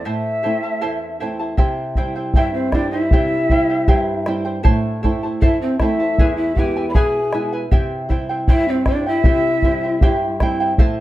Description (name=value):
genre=andean folk, Andean ensemble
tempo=78 BPM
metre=2/4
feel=straight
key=unclear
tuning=A4 = 440 Hz
part: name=mellow quena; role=melody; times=0.0-10.4 s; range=C5 to B5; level=-23 LUFS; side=left 1 dB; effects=slapback echo, plate reverb
part: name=charango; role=accompaniment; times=0.0-11.0 s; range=E4 to A5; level=-24 LUFS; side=right 1 dB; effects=plate reverb
part: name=nylon-string guitar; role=accompaniment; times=0.0-11.0 s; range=E2 to G5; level=-24 LUFS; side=right 2 dB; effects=plate reverb
part: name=bombo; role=percussion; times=1.6-11.0 s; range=none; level=-16 LUFS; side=equal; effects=none
part: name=breathy large pan pipes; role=second line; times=2.4-10.4 s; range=C4 to D5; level=-21 LUFS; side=equal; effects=plate reverb
room=wet studio reverb, RT60 0.5 s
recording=rough home demo mix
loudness=-16 LUFS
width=side -15 dB against mid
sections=0.0-1.6 A section; 1.6-11.0 A section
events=break 0.1-1.6; nylon-string guitar fill 9.6-10.8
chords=0.0 Am; 1.6 C; 4.6 Am; 6.2 E; 7.7 C